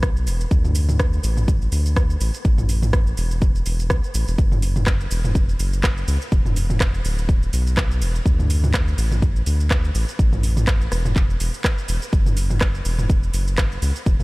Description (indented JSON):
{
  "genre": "afro house",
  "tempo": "124 BPM",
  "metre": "4/4",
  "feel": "swing 56% on 16ths",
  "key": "F# minor",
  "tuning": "A4 = 443 Hz",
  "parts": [
    { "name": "round analog bass", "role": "bass", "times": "0.0-14.2 s", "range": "D1 to D2", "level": "-21 LUFS", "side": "equal", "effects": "sidechain pumping" },
    { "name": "electronic kick drum", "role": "drums", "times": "0.0-14.2 s", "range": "none", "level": "-19 LUFS", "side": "equal", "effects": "none" },
    { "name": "house drum kit", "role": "drums", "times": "0.0-14.2 s", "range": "handclaps, hi-hat, rim click, shaker, toms", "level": "-25 LUFS", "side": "equal", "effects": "none" }
  ],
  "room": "little or no reverb",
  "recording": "none",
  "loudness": "-18 LUFS",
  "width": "side -23 dB against mid",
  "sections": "0.0-14.2 A section",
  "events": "none",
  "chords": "none",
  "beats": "0.03 | 0.51 1.00 1.48 1.96 | 2.45 2.93 3.42 3.90 | 4.38 4.87 5.35 5.83 | 6.32 6.80 7.29 7.77 | 8.26 8.74 9.22 9.71 | 10.19 10.67 11.16 11.64 | 12.13 12.61 13.09 13.58 | 14.06"
}